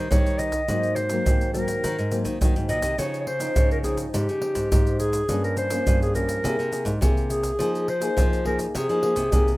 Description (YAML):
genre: samba and choro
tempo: 104 BPM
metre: 4/4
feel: straight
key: F minor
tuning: A4 = 440 Hz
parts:
  - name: warm clarinet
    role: melody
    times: 0.0-9.6 s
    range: G4 to Eb5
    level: -26 LUFS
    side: equal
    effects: none
  - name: nylon-string guitar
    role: accompaniment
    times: 0.0-9.6 s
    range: G2 to G#4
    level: -29 LUFS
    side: left 1 dB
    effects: none
  - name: nylon-string guitar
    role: bass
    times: 0.0-9.6 s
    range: G2 to F3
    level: -28 LUFS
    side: equal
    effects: none
  - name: tube shaker, surdo and pandeiro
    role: percussion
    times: 0.1-9.6 s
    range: none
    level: -24 LUFS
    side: equal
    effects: none
room: moderate studio reverb, RT60 0.6 s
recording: rough home demo mix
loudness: -21 LUFS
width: side -19 dB against mid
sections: 0.0-9.6 A section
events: none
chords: 0.0 Abmaj7 (rootless); 0.7 Ab9; 3.0 Dbmaj9; 5.3 Gm7b5; 6.4 Caug7; 7.6 Fm7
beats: 0.10 | 0.68 1.26 1.83 2.41 | 2.99 3.56 4.14 4.72 | 5.29 5.87 6.44 7.02 | 7.60 8.17 8.75 9.32